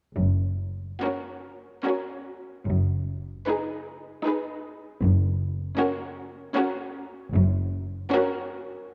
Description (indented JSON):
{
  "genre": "classical, slow romantic movement for symphony orchestra",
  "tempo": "69-79 BPM",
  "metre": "3/4",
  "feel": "rubato",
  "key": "F# major",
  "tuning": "A4 = 440 Hz",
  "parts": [
    { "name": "rich chamber cello section", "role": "bass", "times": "0.2-8.0 s", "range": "F#2", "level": "-29 LUFS", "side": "equal", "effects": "none" },
    { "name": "rich symphonic double bass section", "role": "bass", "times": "0.2-8.0 s", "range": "F#1", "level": "-29 LUFS", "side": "equal", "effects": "none" },
    { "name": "rich symphonic violin section", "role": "melody", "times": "1.0-8.8 s", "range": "A#4 to B4", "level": "-37 LUFS", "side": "equal", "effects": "none" },
    { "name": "rich symphonic violin section", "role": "second line", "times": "1.0-8.7 s", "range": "F#4 to G#4", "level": "-35 LUFS", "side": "equal", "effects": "none" },
    { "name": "rich symphonic viola section", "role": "accompaniment", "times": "1.0-8.8 s", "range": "C#4 to D#4", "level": "-32 LUFS", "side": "equal", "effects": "none" }
  ],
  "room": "moderate concert hall reverb, RT60 2.0 s",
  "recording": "dark, warm production",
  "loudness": "-27 LUFS",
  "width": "mono",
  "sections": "0.2-8.9 A section",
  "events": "none",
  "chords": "0.2 F#; 2.7 G#m7/F#; 5.0 F#",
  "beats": "| 0.17 1.03 1.84 | 2.67 3.48 4.26 | 5.02 5.79 6.57 | 7.33 8.12"
}